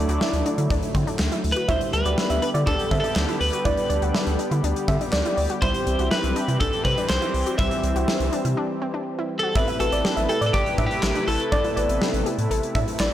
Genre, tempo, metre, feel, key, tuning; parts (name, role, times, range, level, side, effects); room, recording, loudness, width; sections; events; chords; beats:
synth-pop; 122 BPM; 4/4; straight; A4 = 439 Hz
twelve-string electric guitar; melody; 0.0-13.1 s; G4 to E5; -27 LUFS; equal; slapback echo
mellow synth brass; accompaniment; 0.0-12.3 s; G3 to E5; -31 LUFS; equal; chorus
sweeping resonant pad; sustained chords; 0.0-13.1 s; C3 to B4; -29 LUFS; left 1 dB; chorus
round analog bass; bass; 0.0-13.1 s; A1 to D3; -26 LUFS; equal; tube saturation
analog pluck; arpeggios; 0.1-13.1 s; C4 to A4; -32 LUFS; left 2 dB; chorus, slapback echo
gated 80s drum kit; drums; 0.1-13.1 s; handclaps, hi-hat, kick drum, snare drum; -26 LUFS; equal
soft round pluck; second line; 1.7-5.4, 9.6-13.1 s; D5 to E5; -28 LUFS; right 2 dB; chorus, slapback echo
light reverb, studio reverb; blown-out, overdriven recording, overdrive; -20 LUFS; side -12 dB against mid
0.0-9.6 A section; 9.6-13.1 A section
break 8.6-9.6
0.0 Dadd9; 1.7 G/D; 5.6 C; 9.6 Amadd9
0.21 0.70 1.19 | 1.69 2.18 2.67 3.16 | 3.65 4.14 4.64 5.13 | 5.62 6.11 6.60 7.10 | 7.59 8.08 8.57 9.06 | 9.55 10.05 10.54 11.03 | 11.52 12.01 12.51 13.00